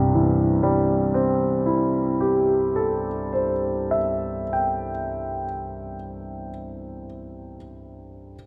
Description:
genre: classical, impressionist solo piano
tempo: 25 BPM (dotted quarters)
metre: 9/8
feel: rubato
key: C major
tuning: A4 = 440 Hz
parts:
  - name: clear concert grand piano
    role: solo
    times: 0.0-8.4 s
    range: C2 to G5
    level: -24 LUFS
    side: equal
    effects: none
room: wet scoring stage reverb, RT60 2.0 s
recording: none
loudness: -23 LUFS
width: mono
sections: 0.0-6.1 A section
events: none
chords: 0.0 C6

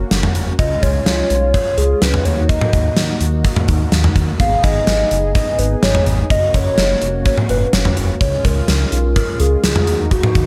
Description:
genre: synth-pop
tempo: 126 BPM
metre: 4/4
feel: straight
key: unclear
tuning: A4 = 439 Hz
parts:
  - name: mellow synth brass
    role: accompaniment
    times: 0.0-10.5 s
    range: G#3 to G#4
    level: -27 LUFS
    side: equal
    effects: chorus
  - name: chorused synth bass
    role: bass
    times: 0.0-10.5 s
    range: E#1 to D#2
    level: -21 LUFS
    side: equal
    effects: none
  - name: gated 80s drum kit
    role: drums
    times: 0.1-10.5 s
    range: hi-hat, kick drum, snare drum, toms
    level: -19 LUFS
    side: equal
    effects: none
  - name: hollow clarinet-like synth lead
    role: melody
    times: 0.6-10.5 s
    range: F#4 to E#5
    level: -21 LUFS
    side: equal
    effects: chorus, diffuse ambient delay
room: moderate plate reverb, RT60 2.1 s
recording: dreamy mix soaked in reverb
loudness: -16 LUFS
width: mono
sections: 0.0-10.5 A section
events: none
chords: 0.0 F#; 0.6 C#; 2.3 D#m; 4.4 G#m; 6.3 F#; 8.2 C#; 9.9 D#m

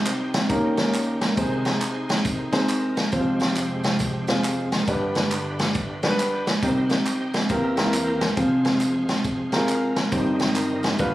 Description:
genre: uptempo gospel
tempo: 137 BPM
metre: 4/4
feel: swing 64% on 8ths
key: C minor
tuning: A4 = 440 Hz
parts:
  - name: warm upright piano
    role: accompaniment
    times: 0.0-11.1 s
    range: F1 to C5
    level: -24 LUFS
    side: equal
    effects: none
  - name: bright tonewheel organ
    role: sustained chords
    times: 0.0-11.1 s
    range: E2 to G5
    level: -28 LUFS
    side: right 1 dB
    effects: slow rotary speaker, overdrive, chorus vibrato
  - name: swinging big-band drum kit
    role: drums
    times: 0.1-11.1 s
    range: kick drum, ride cymbal, snare drum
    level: -25 LUFS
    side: equal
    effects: none
  - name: handclaps and tambourine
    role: percussion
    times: 0.1-11.1 s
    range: none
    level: -35 LUFS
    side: right 1 dB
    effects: none
room: moderate large studio reverb, RT60 0.8 s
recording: recorded on a phone in the room, studio ambience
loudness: -20 LUFS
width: side -15 dB against mid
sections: 0.0-11.1 A section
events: tonewheel organ solo 0.0-11.1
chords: 0.5 Eb7; 1.4 Ab/C; 3.1 Fm; 4.9 G; 6.6 Cm; 7.5 C7/E; 8.4 Fm; 10.1 Cm/G

